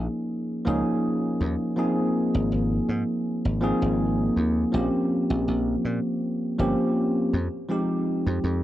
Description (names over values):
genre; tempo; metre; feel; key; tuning
vaporwave; 81 BPM; 4/4; straight; Bb dorian; A4 = 442 Hz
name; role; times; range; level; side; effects
bell-like tine electric piano; accompaniment; 0.0-8.6 s; F3 to Ab4; -24 LUFS; equal; lush chorus, analog delay
dry thumbed slap bass; bass; 0.0-8.6 s; G1 to Bb2; -27 LUFS; equal; none
room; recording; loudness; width
wet plate reverb, RT60 2.5 s; dark, warm production, cassette tape; -22 LUFS; side -14 dB against mid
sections
0.0-8.6 A section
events
none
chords
0.0 Eb7sus4; 1.8 Ab69; 4.7 Bbm69; 7.3 Fm9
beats
0.29 1.03 | 1.77 2.52 3.26 4.00 | 4.74 5.48 6.22 6.96 | 7.70 8.44